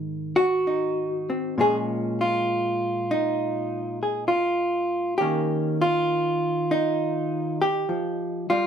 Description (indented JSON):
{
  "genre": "solo jazz",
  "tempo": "67 BPM",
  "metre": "4/4",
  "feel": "swing 68% on 8ths, rubato",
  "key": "unclear",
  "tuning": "A4 = 440 Hz",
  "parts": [
    { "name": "hollow-body jazz guitar", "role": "solo", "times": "0.0-8.7 s", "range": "Ab2 to Ab4", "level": "-22 LUFS", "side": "equal", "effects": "none" }
  ],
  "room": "wet studio reverb, RT60 0.5 s",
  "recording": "band playing live in one room",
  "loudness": "-22 LUFS",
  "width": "side -8 dB against mid",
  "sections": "0.0-8.7 A section",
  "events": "none",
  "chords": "0.0 Ab7; 1.6 Bbm7; 5.2 Eb7",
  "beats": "0.65 | 1.57 2.49 3.39 4.30 | 5.20 6.09 6.98 7.88"
}